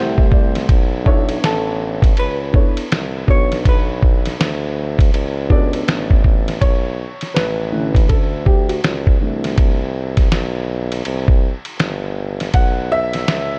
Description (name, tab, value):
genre	hip hop, jazz-hop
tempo	81 BPM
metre	4/4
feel	swing 62% on 16ths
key	unclear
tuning	A4 = 440 Hz
part	dark upright piano	accompaniment	0.0-13.6 s	D3 to F#5	-25 LUFS	equal	none
part	clear tuba	bass	0.0-13.6 s	G1 to D2	-25 LUFS	equal	none
part	lo-fi sampler-style drum kit	drums	0.2-13.5 s	hi-hat, kick drum, ride cymbal, snare drum	-18 LUFS	equal	none
part	vintage hollow-body jazz guitar	melody	1.5-6.2 s	A4 to C#5	-27 LUFS	equal	tape echo
room	little or no reverb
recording	dark, warm production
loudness	-17 LUFS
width	mono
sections	0.0-6.6 A section; 6.6-13.6 B section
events	upright piano fill 0.0-0.7; upright piano solo 6.6-13.6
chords	0.0 C6; 0.7 Bm11; 3.3 Bm9; 6.6 Bm11; 9.2 C6; 12.5 Bsus4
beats	| 0.69 1.43 2.17 2.91 | 3.65 4.39 5.13 5.87 | 6.61 7.36 8.10 8.84 | 9.58 10.32 11.06 11.80 | 12.54 13.28